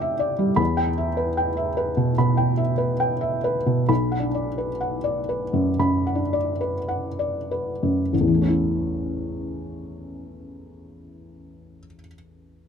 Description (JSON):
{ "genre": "neoclassical minimalist piano", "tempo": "47-79 BPM", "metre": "4/4", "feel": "rubato", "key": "A mixolydian", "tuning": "A4 = 440 Hz", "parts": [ { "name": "felt-muted upright piano", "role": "solo", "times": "0.0-12.7 s", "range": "A1 to D6", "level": "-21 LUFS", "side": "equal", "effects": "none" } ], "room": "little or no reverb", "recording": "close, detailed microphones", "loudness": "-21 LUFS", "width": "side -7 dB against mid", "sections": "0.0-8.1 A section; 8.1-12.7 B section", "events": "slowing down 0.0-8.1", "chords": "0.0 Cadd9; 0.6 Em; 3.9 Bm; 8.1 A", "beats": "| 0.60 1.38 2.17 3.00 | 3.89 4.82 5.80 6.89 | 8.12 9.30 10.49 11.67" }